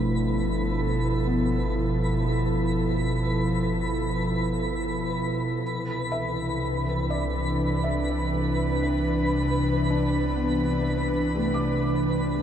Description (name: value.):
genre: ambient.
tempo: 61 BPM.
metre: 4/4.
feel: straight.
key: C major.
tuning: A4 = 441 Hz.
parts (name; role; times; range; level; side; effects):
airy breathy pad; sustained chords; 0.0-12.4 s; B2 to B4; -25 LUFS; equal; chorus.
felt-muted upright piano; arpeggios; 0.0-12.4 s; A3 to D6; -33 LUFS; left 1 dB; ping-pong delay.
warm sub bass; bass; 0.0-12.4 s; G1 to C2; -31 LUFS; equal; none.
twinkling granular texture; texture; 0.0-12.4 s; B4 to B5; -32 LUFS; left 1 dB; built-in reverb.
room: wet huge ambient reverb, RT60 7.4 s.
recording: dark, warm production.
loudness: -23 LUFS.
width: side -9 dB against mid.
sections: 0.0-12.4 A section.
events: none.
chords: 0.0 G13; 5.6 Cmaj9.